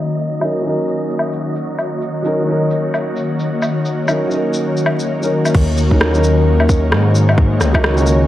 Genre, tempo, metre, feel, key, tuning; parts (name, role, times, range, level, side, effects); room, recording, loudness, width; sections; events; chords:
future garage; 131 BPM; 4/4; swing 60% on 16ths; Eb minor; A4 = 438 Hz
felt-muted upright piano; accompaniment; 0.0-8.3 s; Gb3 to Bb4; -20 LUFS; right 1 dB; sidechain pumping, tape echo
ethereal airy pad; sustained chords; 0.0-8.3 s; Eb3 to Db5; -19 LUFS; left 2 dB; ensemble chorus, built-in reverb, sidechain pumping
wind-like tuned noise texture; texture; 0.0-5.6 s; Eb5; -29 LUFS; right 1 dB; built-in reverb
garage drum kit; drums; 0.2-8.2 s; crash cymbal, rim click, shaker, woodblock; -22 LUFS; left 1 dB
swelling detuned saw bass; bass; 5.5-8.3 s; Db2 to Ab2; -14 LUFS; equal; sidechain pumping
electronic kick drum; drums; 5.5-7.8 s; -14 LUFS; equal
moderate lush hall reverb, RT60 1.9 s, digital ambience; vinyl crackle, low-pass filter; -14 LUFS; side -14 dB against mid
0.0-5.5 A section; 5.5-8.3 B section
filter sweep on ambient pad 0.0-5.5; filter sweep 0.0-5.5
0.0 Ebm7